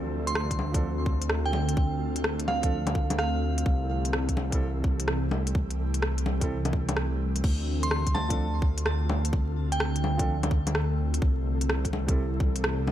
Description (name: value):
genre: future garage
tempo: 127 BPM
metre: 4/4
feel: swing 66% on 16ths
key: D minor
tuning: A4 = 444 Hz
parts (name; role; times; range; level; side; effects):
- felt-muted upright piano; accompaniment; 0.0-12.2 s; F3 to A4; -38 LUFS; right 2 dB; sidechain pumping, ping-pong delay
- ethereal airy pad; sustained chords; 0.0-12.9 s; D3 to A4; -35 LUFS; left 1 dB; ensemble chorus, built-in reverb, sidechain pumping
- dark detuned saw bass; bass; 0.0-12.9 s; C2 to D2; -28 LUFS; equal; sidechain pumping
- wind-like tuned noise texture; texture; 0.0-12.9 s; A4; -42 LUFS; right 2 dB; built-in reverb
- glassy synth bell; melody; 0.3-3.7, 7.8-10.4 s; F5 to C6; -34 LUFS; right 2 dB; chorus, digital delay
- organic electronic drum kit; drums; 0.3-12.9 s; bongos, crash cymbal, hi-hat, rim click; -31 LUFS; left 1 dB; none
- electronic kick drum; drums; 0.5-12.5 s; none; -26 LUFS; equal; none
room: light reverb, digital ambience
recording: vinyl crackle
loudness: -25 LUFS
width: side -12 dB against mid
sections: 0.0-12.9 A section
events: none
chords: 0.0 Dm7; 3.7 C6; 7.4 Dm7; 11.2 C6